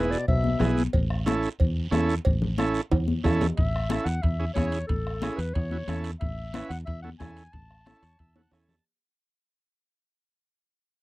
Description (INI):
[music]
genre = latin, cumbia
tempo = 182 BPM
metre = 4/4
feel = straight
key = A major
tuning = A4 = 440 Hz
[part]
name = clear clarinet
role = melody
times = 0.0-0.7, 3.6-8.7 s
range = A4 to A5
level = -34 LUFS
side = left 2 dB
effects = none
[part]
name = clear trombone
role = second line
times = 0.0-0.7 s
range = G#2 to B2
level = -32 LUFS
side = left 3 dB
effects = none
[part]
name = combo organ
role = accompaniment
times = 0.0-8.8 s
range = B3 to A5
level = -28 LUFS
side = right 3 dB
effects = none
[part]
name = fingered electric bass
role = bass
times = 0.0-8.8 s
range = E1 to E2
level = -28 LUFS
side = equal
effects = none
[part]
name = guiro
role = percussion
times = 0.1-8.9 s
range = none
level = -47 LUFS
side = right 6 dB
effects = none
[part]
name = bombo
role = percussion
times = 0.3-8.7 s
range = none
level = -28 LUFS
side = equal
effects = none
[part]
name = congas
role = percussion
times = 0.3-8.8 s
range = none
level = -31 LUFS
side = left 4 dB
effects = none
[part]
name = cowbell and timbales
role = percussion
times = 0.3-8.8 s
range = none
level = -34 LUFS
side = right 4 dB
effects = none
[sound]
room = little or no reverb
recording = dry, close 1970s-style studio recording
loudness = -24 LUFS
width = side -18 dB against mid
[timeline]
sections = 0.0-3.6 A section; 3.6-8.9 B section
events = drum fill 2.9-3.6, 8.4-8.9; fade-out 3.6-8.9; transistor combo organ fill 7.9-8.9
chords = 0.0 E; 0.9 A